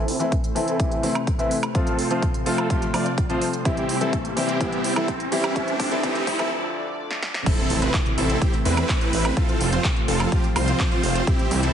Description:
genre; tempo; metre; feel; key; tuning
EDM, festival progressive house; 126 BPM; 4/4; straight; A minor; A4 = 440 Hz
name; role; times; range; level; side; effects
lush unison pad; sustained chords; 0.0-11.7 s; C3 to D5; -29 LUFS; equal; chorus, sidechain pumping
big supersaw lead; riff; 0.0-11.7 s; C4 to D5; -26 LUFS; right 1 dB; sidechain pumping, low-pass filter, tape echo
riser and impact; sound effects; 2.4-9.4 s; none; -33 LUFS; equal; none
big-room dance drum kit; drums; 0.1-11.7 s; crash cymbal, handclaps, hi-hat, snare drum, woodblock; -29 LUFS; right 2 dB; overdrive
warm concert grand piano; accompaniment; 0.2-6.5 s; E3 to F4; -26 LUFS; left 2 dB; sidechain pumping, tape echo
electronic kick drum; drums; 0.3-11.4 s; none; -23 LUFS; equal; none
detuned saw bass; bass; 7.7-11.7 s; F1 to E2; -24 LUFS; equal; sidechain pumping
room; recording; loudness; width
light reverb; heavily compressed radio sound, high-pass filter, nothing above 10.8 kHz; -20 LUFS; side -9 dB against mid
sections
0.0-7.5 A section; 7.5-11.7 B section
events
build-up 0.0-7.5; filter sweep on supersaw synth 0.0-7.5; filter sweep 0.0-7.5; riser 2.4-6.5; drum fill 3.7-6.5, 7.1-7.5; break 6.5-7.5; drop 7.5-11.7; impact 7.5-9.4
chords
0.0 Am; 1.7 F; 3.7 C; 5.6 Dm; 7.5 Am; 9.4 F

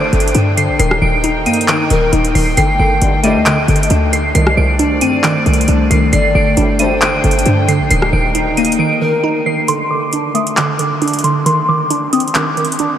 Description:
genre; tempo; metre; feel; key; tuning
hip hop, trap; 135 BPM; 4/4; half-time; unclear; A4 = 440 Hz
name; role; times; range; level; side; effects
soft synth bell; melody; 0.0-13.0 s; C6 to Eb7; -18 LUFS; right 1 dB; chorus, low-pass filter, tape echo
breathy hollow pan flute; second line; 0.0-9.2 s; Bb4 to G5; -22 LUFS; left 2 dB; tape echo
glassy wavetable pluck; accompaniment; 0.0-13.0 s; D3 to Eb4; -17 LUFS; equal; chorus, low-pass filter
dark studio string section; sustained chords; 0.0-9.7 s; A3 to G5; -22 LUFS; left 1 dB; none
short 808-style bass; bass; 0.0-8.8 s; Eb1 to G2; -15 LUFS; equal; none
trap drum kit; drums; 0.1-12.9 s; handclaps, hi-hat, rim click; -20 LUFS; equal; overdrive
mellow brass ensemble; stabs; 3.0-3.4, 6.6-6.9 s; A1 to G3; -28 LUFS; right 2 dB; none
room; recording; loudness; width
wet huge ambient reverb, RT60 8.6 s; dreamy mix soaked in reverb; -11 LUFS; side -10 dB against mid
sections
0.0-9.7 A section; 9.7-13.0 B section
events
drums muted 8.8-9.7; break 9.7-13.0; filter sweep 9.7-13.0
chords
0.0 Gsus2; 0.8 Eb; 2.6 Gsus2; 4.3 Cmadd9; 6.1 Gsus2; 7.9 Eb; 9.7 Csus2/D; 11.5 Cmadd9

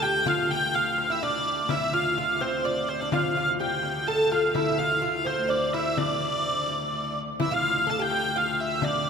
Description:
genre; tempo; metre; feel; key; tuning
medieval dance; 126 BPM; 3/4; straight; D minor; A4 = 440 Hz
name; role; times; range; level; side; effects
clear hurdy-gurdy; melody; 0.0-9.1 s; C5 to A5; -25 LUFS; equal; none
oud; second line; 0.0-9.1 s; C4 to A4; -28 LUFS; right 1 dB; none
rich viola da gamba; drone; 0.0-9.1 s; D2; -36 LUFS; left 4 dB; none
frame drum; percussion; 0.3-9.0 s; none; -34 LUFS; left 5 dB; none
room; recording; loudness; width
wet cathedral reverb, RT60 4.5 s; minimal, uncompressed stereo recording; -23 LUFS; side -6 dB against mid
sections
0.0-7.4 A section; 7.4-9.1 B section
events
none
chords
none

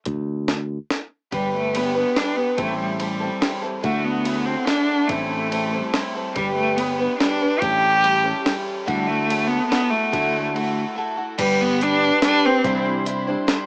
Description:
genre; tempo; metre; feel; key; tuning
indie folk with a building arrangement; 143 BPM; 3/4; straight; G major; A4 = 440 Hz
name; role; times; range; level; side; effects
fingered electric bass; bass; 0.1-13.3 s; G1 to D2; -30 LUFS; equal; none
jungle sampler-style drum kit; drums; 0.1-13.6 s; crash cymbal, hi-hat, kick drum, ride cymbal, snare drum; -29 LUFS; equal; cassette tape
clear cello; melody; 1.3-12.9 s; G3 to G4; -24 LUFS; equal; cassette tape, plate reverb
picked twelve-string acoustic guitar; accompaniment; 1.3-13.7 s; A2 to C5; -27 LUFS; equal; cassette tape, plate reverb
room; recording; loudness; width
moderate booth ambience, RT60 0.2 s; home recording on cassette, small speaker sound; -21 LUFS; mono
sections
0.0-1.3 A section; 1.3-11.4 B section; 11.4-13.7 C section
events
break 11.0-11.4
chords
0.0 N.C.; 1.3 G; 2.6 Am7; 3.8 Dadd9; 5.1 Am7; 6.4 G; 7.6 A7; 8.9 Dadd9; 11.4 G; 12.6 Cadd9

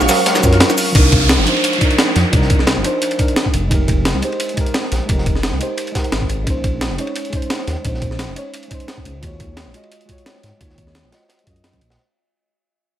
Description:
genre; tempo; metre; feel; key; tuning
liquid drum and bass; 174 BPM; 4/4; swing 54% on 16ths; unclear; A4 = 443 Hz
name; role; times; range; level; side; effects
clear flugelhorn; melody; 0.0-0.6 s; Gb4; -32 LUFS; right 2 dB; none
deep mellow chord stab; accompaniment; 0.0-12.0 s; F3 to F5; -22 LUFS; equal; chorus, cassette tape, tape echo
shimmering ambient pad; sustained chords; 0.0-0.9 s; Ab3 to Db6; -23 LUFS; right 2 dB; chorus, built-in reverb, sidechain pumping
dark detuned saw bass; bass; 0.0-12.0 s; F1 to Ab2; -19 LUFS; equal; none
breakbeat sampler-style drum kit; drums; 0.0-11.9 s; cabasa, crash cymbal, hi-hat, snare drum; -20 LUFS; equal; none
crunchy breakbeat drum kit; drums; 0.1-12.0 s; ride cymbal, snare drum; -25 LUFS; equal; high-pass filter on cymbals, high-pass filter on snare, high-pass filter on room
electronic kick drum; drums; 0.4-11.8 s; none; -17 LUFS; equal; none
downlifter; sound effects; 1.0-3.7 s; none; -21 LUFS; right 2 dB; none
room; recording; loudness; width
light reverb, digital ambience; none; -14 LUFS; side -11 dB against mid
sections
1.0-12.0 A section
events
fade-out 1.0-12.0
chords
0.0 Ebm11 (rootless); 1.0 Cm11; 3.5 Fm11; 6.5 Bbm11; 9.2 Ebm11

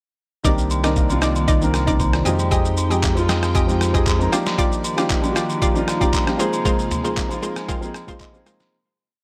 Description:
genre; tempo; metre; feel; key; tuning
amapiano; 116 BPM; 4/4; straight; unclear; A4 = 440 Hz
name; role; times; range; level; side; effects
dark baby grand piano; accompaniment; 0.4-8.7 s; Eb3 to Bb5; -25 LUFS; equal; none
phased string machine; sustained chords; 1.0-8.7 s; C3 to G5; -32 LUFS; equal; none
analog pluck; stabs; 0.4-8.6 s; Ab3 to Eb5; -28 LUFS; equal; chorus, analog delay
saturated sub bass; bass; 0.4-4.3 s; C2 to F2; -24 LUFS; equal; none
boom bap sampler-style drum kit; drums; 0.4-8.7 s; handclaps, kick drum, rim click, shaker, snare drum, toms; -24 LUFS; equal; none
agogo bells and woodblock; percussion; 0.7-8.7 s; none; -34 LUFS; equal; none
room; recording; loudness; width
digital ambience; none; -20 LUFS; mono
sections
0.4-8.7 groove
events
fade-out 6.7-8.7; grand piano fill 7.2-8.7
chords
0.4 Cm9; 2.3 Fm9; 4.3 Ebmaj9; 6.4 Ab69

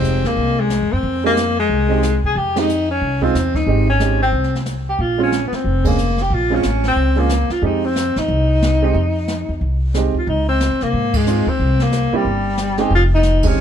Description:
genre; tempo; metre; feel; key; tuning
jazz, small-group swing and bop; 182 BPM; 4/4; swing 61% on 8ths; F minor; A4 = 441 Hz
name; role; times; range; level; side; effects
breathy tenor saxophone; melody; 0.0-13.6 s; G3 to Ab4; -18 LUFS; left 2 dB; none
clear concert grand piano; accompaniment; 0.0-13.6 s; Ab3 to Ab4; -22 LUFS; right 8 dB; none
upright bass; bass; 0.0-13.6 s; F1 to C3; -19 LUFS; equal; none
jazz brush drum kit; drums; 0.0-13.6 s; brushed snare drum, hi-hat, kick drum, ride cymbal, snare drum; -26 LUFS; equal; none
room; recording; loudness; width
light reverb; dark, warm production; -15 LUFS; side -9 dB against mid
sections
0.0-13.6 A section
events
band accent 2.5, 5.8, 11.1, 13.4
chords
0.0 Fm9; 5.0 Bbm9; 7.6 Fm9; 10.3 Dbmaj7; 11.6 C7(no3); 12.9 Fm9

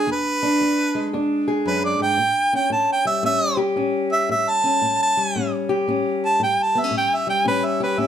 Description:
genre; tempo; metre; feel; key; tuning
acoustic country blues, solo or duo; 114 BPM; 4/4; swing 65% on 8ths; unclear; A4 = 440 Hz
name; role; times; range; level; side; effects
warm harmonica; melody; 0.0-8.1 s; B4 to A5; -19 LUFS; right 2 dB; none
fingerpicked steel-string acoustic guitar; accompaniment; 0.0-8.1 s; E2 to G#4; -22 LUFS; left 2 dB; none
room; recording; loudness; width
light reverb; none; -18 LUFS; side -9 dB against mid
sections
0.0-8.1 A section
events
harmonica solo 0.0-8.1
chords
0.0 E7; 2.2 A7

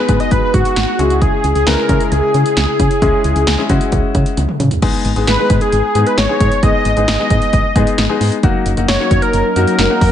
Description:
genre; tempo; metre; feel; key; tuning
synth-pop; 133 BPM; 4/4; straight; G# minor; A4 = 441 Hz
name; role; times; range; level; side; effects
wide unison lead; melody; 0.0-10.1 s; F#4 to D#5; -16 LUFS; equal; none
warm grand piano; accompaniment; 0.0-10.1 s; F#3 to B4; -19 LUFS; left 6 dB; none
ensemble organ-string; sustained chords; 0.0-4.8, 8.4-10.1 s; C#3 to G#4; -23 LUFS; left 1 dB; ensemble chorus
solid FM bass; bass; 0.1-10.1 s; F#1 to C#3; -16 LUFS; equal; none
punchy analog drum machine; drums; 0.1-10.1 s; crash cymbal, hi-hat, kick drum, snare drum, toms; -16 LUFS; right 1 dB; none
room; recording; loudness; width
light reverb, digital ambience; nothing above 10.4 kHz; -11 LUFS; side -10 dB against mid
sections
0.0-4.8 A section; 4.8-10.1 B section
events
drum fill 4.4-4.8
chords
0.0 G#m7; 1.0 C#m; 4.8 G#m; 8.4 D#m7/F#

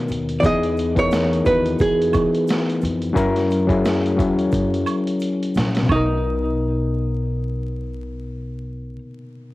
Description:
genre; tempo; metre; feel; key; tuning
lo-fi hip hop; 88 BPM; 4/4; swing 57% on 16ths; B major; A4 = 443 Hz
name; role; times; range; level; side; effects
overdriven reed electric piano; accompaniment; 0.0-9.5 s; B2 to C#5; -21 LUFS; left 2 dB; cassette tape
upright bass; bass; 0.1-9.0 s; A#1 to F#2; -26 LUFS; equal; none
boom bap sampler-style drum kit; drums; 0.1-6.1 s; hi-hat, kick drum, snare drum; -24 LUFS; equal; cassette tape
egg shaker and woodblock; percussion; 0.1-6.2 s; none; -30 LUFS; right 6 dB; none
archtop guitar, miked and amplified; melody; 0.4-9.0 s; D#4 to D#5; -21 LUFS; right 2 dB; tape echo, plate reverb
room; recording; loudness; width
light reverb; home recording on cassette, vinyl crackle; -17 LUFS; side -18 dB against mid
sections
0.0-5.9 A section; 5.9-8.6 B section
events
drum fill 4.5-5.9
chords
0.4 Emaj7; 3.2 F#7; 5.9 Bmaj7

